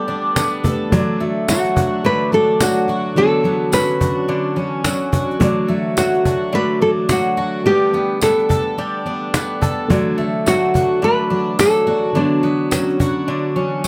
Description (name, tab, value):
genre	acoustic pop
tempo	107 BPM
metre	4/4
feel	swing 60% on 16ths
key	D major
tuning	A4 = 440 Hz
part	nylon-string guitar	melody	0.0-13.8 s	D4 to B4	-20 LUFS	equal	none
part	felt-muted upright piano	accompaniment	0.0-13.9 s	D3 to D5	-28 LUFS	equal	none
part	fingerpicked twelve-string acoustic guitar	accompaniment	0.0-13.9 s	D3 to A4	-24 LUFS	equal	none
part	picked steel-string acoustic guitar	arpeggios	0.0-13.9 s	F#3 to A4	-26 LUFS	equal	none
part	cajon	drums	0.1-13.9 s	none	-23 LUFS	equal	none
part	tambourine	percussion	0.4-13.9 s	none	-30 LUFS	equal	none
room	light reverb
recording	none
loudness	-17 LUFS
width	mono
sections	0.0-13.9 A section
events	none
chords	0.0 Gadd9; 0.9 D; 3.2 Bmadd9/D; 5.4 D; 7.7 Gadd9; 9.9 D; 12.2 Bmadd9/D